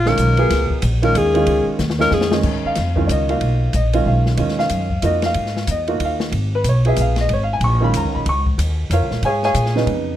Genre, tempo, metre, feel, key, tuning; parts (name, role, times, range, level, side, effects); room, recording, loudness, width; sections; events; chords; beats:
modal jazz; 186 BPM; 3/4; swing 61% on 8ths; G# dorian; A4 = 436 Hz
clear alto saxophone; melody; 0.0-2.4 s; G#4 to A#4; -18 LUFS; left 3 dB
upright bass; bass; 0.0-10.2 s; G#1 to A#2; -19 LUFS; equal
clear baby grand piano; accompaniment; 0.1-10.2 s; C#3 to C#6; -20 LUFS; right 2 dB
open jazz drum kit; drums; 0.1-10.0 s; crash cymbal, hi-hat, kick drum, ride cymbal, snare drum; -26 LUFS; left 2 dB
light reverb; dark, warm production; -15 LUFS; side -12 dB against mid
0.0-2.4 A section; 2.4-10.2 A section
alto saxophone solo 0.0-2.4; drum fill 1.8-2.4
0.0 C#6; 2.4 G#m69; 6.3 C#6/G#
0.17 | 0.50 0.82 1.14 | 1.47 1.79 2.11 | 2.44 2.76 3.08 | 3.41 3.73 4.06 | 4.38 4.70 5.03 | 5.35 5.67 6.00 | 6.32 6.64 6.97 | 7.29 7.62 7.94 | 8.26 8.59 8.91 | 9.23 9.56 9.88